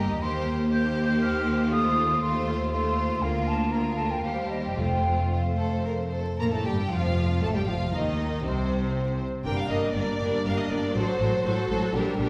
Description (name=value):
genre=quick classical-period movement for symphony orchestra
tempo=119 BPM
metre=3/4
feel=rubato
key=Bb major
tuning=A4 = 438 Hz
part: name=rich chamber violin section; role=melody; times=0.0-12.2 s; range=A4 to Bb5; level=-36 LUFS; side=equal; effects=none
part: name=clear chamber violin section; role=second line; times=0.0-12.3 s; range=C4 to C5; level=-36 LUFS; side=equal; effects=none
part: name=silver concert flute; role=second line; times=0.0-6.1 s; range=Eb5 to G6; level=-32 LUFS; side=equal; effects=none
part: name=rich studio viola section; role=accompaniment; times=0.0-12.3 s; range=C3 to F#4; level=-34 LUFS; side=equal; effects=none
part: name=rich studio cello section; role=bass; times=0.0-12.3 s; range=C2 to Bb2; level=-33 LUFS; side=equal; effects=none
part: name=warm studio double bass section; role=bass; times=0.0-12.3 s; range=F1 to Eb2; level=-33 LUFS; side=equal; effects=none
part: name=timpani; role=percussion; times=4.8-5.6 s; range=F2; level=-34 LUFS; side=equal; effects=none
part: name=mellow French horn section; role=sustained chords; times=6.4-12.3 s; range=C3 to F#4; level=-34 LUFS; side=equal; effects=none
room=wet scoring stage reverb, RT60 1.6 s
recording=heard from further back in the room, vinyl crackle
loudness=-26 LUFS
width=mono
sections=0.0-6.4 A section; 6.4-12.3 B section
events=none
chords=0.2 Cm7/Eb; 1.7 F7/Eb; 3.2 Bb/D; 4.2 Cm/Eb; 4.8 F; 6.4 Bb5; 7.9 Cm; 8.9 N.C.; 9.4 Gm; 10.9 F#dim/A